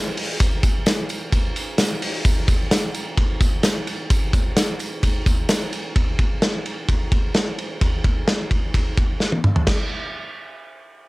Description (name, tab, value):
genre	indie pop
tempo	129 BPM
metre	4/4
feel	straight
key	none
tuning	none
part	loose indie drum kit	drums	0.2-9.8 s	crash cymbal, hi-hat, kick drum, ride cymbal, snare drum, toms	-19 LUFS	equal	cassette tape
part	tambourine	percussion	0.4-5.8 s	none	-34 LUFS	right 2 dB	none
room	little or no reverb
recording	home recording on cassette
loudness	-18 LUFS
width	side -22 dB against mid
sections	0.0-2.2 A section; 2.2-9.7 B section; 9.7-11.1 C section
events	drum fill 9.2-9.7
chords	none